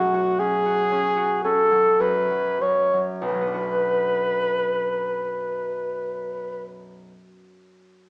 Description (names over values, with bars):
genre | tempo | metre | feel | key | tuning
classical, impressionist duo for alto saxophone and harp | 46-60 BPM | 4/4 | rubato | B dorian | A4 = 440 Hz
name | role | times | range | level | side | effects
clear alto saxophone | melody | 0.0-6.7 s | F#4 to C#5 | -20 LUFS | equal | none
concert harp | accompaniment | 0.0-7.2 s | B1 to F#4 | -30 LUFS | equal | none
room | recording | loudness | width
wet recital hall reverb, RT60 1.3 s | small speaker sound | -20 LUFS | side -30 dB against mid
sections
0.0-3.2 A section; 3.2-7.7 B section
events
slowing down 0.0-3.2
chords
0.0 F#sus4/B; 3.2 Bm